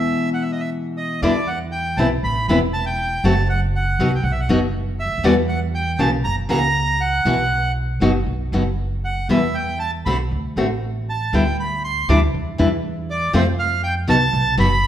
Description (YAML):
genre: tango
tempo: 119 BPM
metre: 4/4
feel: rubato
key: E minor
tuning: A4 = 442 Hz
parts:
  - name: bandoneon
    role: melody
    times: 0.0-14.9 s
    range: C5 to D6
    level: -22 LUFS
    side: right 2 dB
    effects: none
  - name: nylon-string guitar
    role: accompaniment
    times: 0.0-14.7 s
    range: B2 to F#4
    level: -21 LUFS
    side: left 2 dB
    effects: none
  - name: upright bass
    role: bass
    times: 0.0-14.9 s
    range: E1 to F2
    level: -22 LUFS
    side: right 1 dB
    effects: none
room: moderate recital hall reverb, RT60 1.6 s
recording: recorded in a church or concert hall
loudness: -17 LUFS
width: side -10 dB against mid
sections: 0.0-1.2 A section; 1.2-14.9 B section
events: break 0.2-1.2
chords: 0.0 E; 1.2 Em7; 2.2 Amadd9; 3.2 F#dim; 4.2 B; 5.2 Emadd9; 6.2 F#; 7.3 Bsus4; 8.3 B5; 9.3 Em; 10.3 D5; 11.3 G6/D; 12.3 Cadd9/E (rootless); 13.3 F; 14.3 B